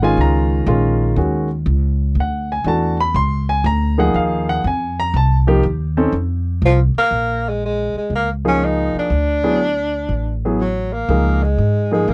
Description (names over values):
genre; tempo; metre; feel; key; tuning
jazz, small-group swing and bop; 121 BPM; 4/4; swing 67% on 8ths; Bb minor; A4 = 440 Hz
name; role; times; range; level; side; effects
warm grand piano; accompaniment; 0.0-12.1 s; Eb3 to C6; -20 LUFS; equal; none
upright bass; bass; 0.0-12.1 s; Ab1 to Ab2; -21 LUFS; equal; none
mellow tenor saxophone; melody; 6.7-12.1 s; F3 to Eb4; -21 LUFS; equal; none
room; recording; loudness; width
little or no reverb; dry, close 1970s-style studio recording; -18 LUFS; mono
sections
0.0-7.1 A section; 7.1-12.1 B section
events
none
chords
0.0 Gb69 (rootless); 1.2 Ebm7; 2.2 Dadd9; 3.2 Dbadd9; 5.1 Cm7; 6.1 F5; 7.1 Bbm7; 9.1 Dadd9; 11.1 Dbadd9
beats
0.18 0.68 | 1.18 1.67 2.17 2.66 | 3.16 3.65 4.15 4.64 | 5.14 5.63 6.13 6.62 | 7.12 7.62 8.11 8.61 | 9.11 9.60 10.10 10.60 | 11.09 11.59 12.09